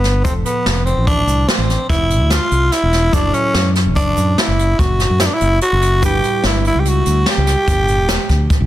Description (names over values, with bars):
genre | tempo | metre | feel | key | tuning
progressive instrumental, band music in an uneven meter | 145 BPM | 7/4 | straight | G lydian | A4 = 438 Hz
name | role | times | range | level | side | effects
growling tenor saxophone | melody | 0.0-8.7 s | B3 to G4 | -17 LUFS | equal | digital delay
hollow-body jazz guitar | accompaniment | 0.0-8.7 s | D3 to C#5 | -27 LUFS | equal | double-tracked left and right
fingered electric bass | bass | 0.0-8.7 s | E1 to F#2 | -16 LUFS | equal | none
jazz brush drum kit | drums | 0.0-8.6 s | hi-hat, kick drum, snare drum | -18 LUFS | equal | soft clipping on snare
tube shaker | percussion | 0.3-8.4 s | none | -33 LUFS | right 8 dB | none
room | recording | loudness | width
light reverb | dense, heavily limited modern master | -13 LUFS | side -13 dB against mid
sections
0.0-8.7 A section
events
none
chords
0.3 F; 3.1 F#m7; 6.0 G6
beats
| 0.25 0.66 1.08 1.49 1.90 2.31 2.72 | 3.14 3.55 3.96 4.37 4.79 5.20 5.61 | 6.02 6.44 6.85 7.26 7.68 8.09 8.50